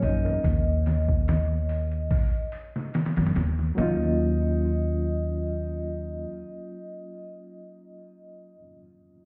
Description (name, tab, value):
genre	trip hop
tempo	72 BPM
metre	4/4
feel	swing 54% on 16ths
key	Eb minor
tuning	A4 = 441 Hz
part	vibraphone with medium hard mallets	melody	0.0-8.6 s	Eb5	-38 LUFS	equal	tape echo
part	bright reed electric piano	accompaniment	0.0-9.3 s	Gb3 to Ab4	-34 LUFS	equal	fast tremolo, tape echo
part	felt-muted upright piano	arpeggios	0.0-9.3 s	Db4 to Bb4	-43 LUFS	equal	tape echo
part	upright bass	bass	0.0-6.2 s	Eb2 to Gb2	-28 LUFS	equal	none
part	trip hop sampler-style drum kit	drums	0.0-4.0 s	hi-hat, kick drum, snare drum	-29 LUFS	equal	overdrive
room	studio ambience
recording	heard muffled through a wall, stone room reverb, EQ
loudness	-26 LUFS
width	mono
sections	0.0-3.8 A section; 3.8-7.1 B section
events	none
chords	0.0 Ebm7